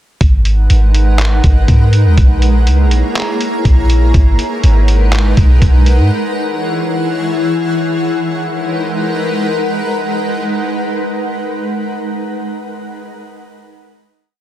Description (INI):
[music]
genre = hip hop, atmospheric cloud-rap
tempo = 122 BPM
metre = 4/4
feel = half-time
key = G# minor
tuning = A4 = 441 Hz
[part]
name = granular cloud pad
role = sustained chords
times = 0.6-11.7 s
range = E3 to A#5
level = -17 LUFS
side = equal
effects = built-in reverb, sidechain pumping
[part]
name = clean 808-style bass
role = bass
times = 0.2-6.1 s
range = G#1 to G#2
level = -10 LUFS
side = equal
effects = none
[part]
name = trip hop sampler-style drum kit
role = drums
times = 0.2-6.0 s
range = handclaps, hi-hat, kick drum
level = -12 LUFS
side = equal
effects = none
[sound]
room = little or no reverb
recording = dense, heavily limited modern master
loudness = -11 LUFS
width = side -12 dB against mid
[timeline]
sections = 0.2-8.1 verse; 8.1-12.0 final chord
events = none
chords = 0.2 G#m7; 2.2 A#m7b5; 4.1 G#m7; 6.1 E6; 8.1 G#m7